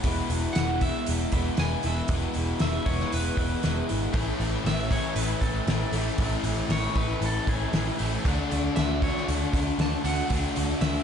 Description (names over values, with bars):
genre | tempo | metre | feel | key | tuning
rock, shoegaze and dream pop | 117 BPM | 4/4 | straight | A major | A4 = 440 Hz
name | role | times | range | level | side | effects
crunchy overdriven guitar | riff | 0.0-11.0 s | E2 to F#4 | -31 LUFS | left 8 dB | analog chorus
crunchy overdriven guitar | riff | 0.0-11.0 s | A2 to F#4 | -32 LUFS | right 5 dB | reverse reverb
vintage muted picked electric bass | bass | 0.0-11.0 s | E1 to D2 | -29 LUFS | right 1 dB | none
loose indie drum kit | drums | 0.0-10.9 s | hi-hat, kick drum, snare drum | -29 LUFS | equal | none
electric guitar at the edge of break-up | melody | 0.5-11.0 s | G#4 to A5 | -34 LUFS | equal | spring reverb, diffuse ambient delay
distorted electric guitar | riff | 4.1-11.0 s | A2 to D4 | -34 LUFS | left 1 dB | overdrive
room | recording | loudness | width
moderate plate reverb, RT60 1.2 s, small room ambience | dreamy mix soaked in reverb, nothing above 11.0 kHz | -24 LUFS | side -7 dB against mid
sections
0.0-11.0 A section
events
none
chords
0.0 E; 4.2 A; 8.3 D